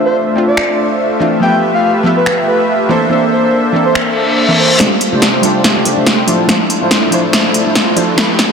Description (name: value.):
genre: future bass.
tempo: 142 BPM.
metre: 4/4.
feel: swing 54% on 16ths, half-time.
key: unclear.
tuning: A4 = 440 Hz.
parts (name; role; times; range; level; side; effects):
soft round pluck; accompaniment; 0.0-8.5 s; E3 to E5; -18 LUFS; right 1 dB; analog chorus, ping-pong delay.
soft supersaw; riff; 0.0-8.5 s; A3 to E5; -14 LUFS; equal; wide subtle chorus, low-pass filter.
breathy flute-like synth lead; melody; 0.1-4.8 s; B4 to G5; -17 LUFS; equal; chorus, ping-pong delay.
big-room dance drum kit; drums; 0.6-8.5 s; finger snaps, hi-hat, snare drum; -14 LUFS; equal; soft clipping on snare.
reverse cymbal and riser; sound effects; 4.1-8.5 s; none; -19 LUFS; left 2 dB; none.
long sustained 808-style bass; bass; 4.8-8.2 s; D1 to D2; -24 LUFS; equal; high-pass filter.
room: moderate huge ambient reverb, RT60 4.0 s.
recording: dense, heavily limited modern master, high-pass filter.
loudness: -9 LUFS.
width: side -6 dB against mid.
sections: 0.0-4.8 A section; 4.8-8.5 B section.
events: filter sweep on supersaw synth 0.0-4.8; reverse cymbal 4.1-4.8; build-up 4.8-8.5; drum fill 4.8-8.5.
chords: 0.0 Dm9; 1.4 G13; 2.9 C13; 4.8 F69; 6.3 Dm9.